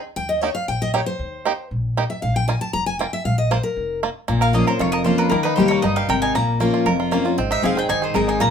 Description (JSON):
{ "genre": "bluegrass", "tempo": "233 BPM", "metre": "4/4", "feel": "straight", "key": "Bb dorian", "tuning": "A4 = 439 Hz", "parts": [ { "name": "picked steel-string acoustic guitar", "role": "accompaniment", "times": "0.2-8.5 s", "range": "F2 to Bb5", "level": "-21 LUFS", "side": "left 2 dB", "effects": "none" }, { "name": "upright bass", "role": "bass", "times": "0.2-8.5 s", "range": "F1 to Eb2", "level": "-25 LUFS", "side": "left 1 dB", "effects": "none" }, { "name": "bluegrass banjo", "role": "melody", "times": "0.4-8.5 s", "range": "Bb3 to Bb4", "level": "-23 LUFS", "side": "right 6 dB", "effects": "none" }, { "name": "mandolin", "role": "melody", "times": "4.4-8.5 s", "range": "Bb4 to Bb5", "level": "-24 LUFS", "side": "left 1 dB", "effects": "none" } ], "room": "moderate studio ambience, RT60 0.5 s", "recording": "minimal, uncompressed stereo recording", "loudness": "-18 LUFS", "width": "side -7 dB against mid", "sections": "0.0-4.3 A section; 4.3-8.5 B section", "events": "steel-string acoustic guitar solo 0.0-4.3", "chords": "0.2 Eb; 2.2 Bb5; 4.3 Bbm; 5.3 Eb; 6.3 Bbm; 7.4 Ab" }